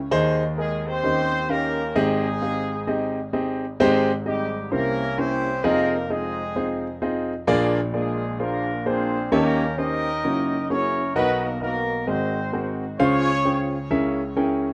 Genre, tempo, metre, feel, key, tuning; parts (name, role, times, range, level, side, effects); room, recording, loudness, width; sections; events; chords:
gospel; 130 BPM; 4/4; swing 62% on 8ths; Ab major; A4 = 441 Hz
warm grand piano; accompaniment; 0.0-14.7 s; F1 to G5; -24 LUFS; equal
warm horn section; melody; 0.6-13.9 s; G3 to Eb5; -28 LUFS; equal
wet studio reverb, RT60 0.6 s; rough home demo mix, nothing above 10.4 kHz; -23 LUFS; mono
0.0-3.8 A section; 3.8-14.7 A section
0.1 Ab/Eb; 1.0 Eb7; 2.0 Abmaj7; 4.7 C7b9; 5.6 Fm7; 7.5 Bb7; 9.3 Eb7; 10.2 Gb7; 11.2 Bmaj7; 12.1 Ab9; 13.0 Dbmaj7; 13.9 Dbm6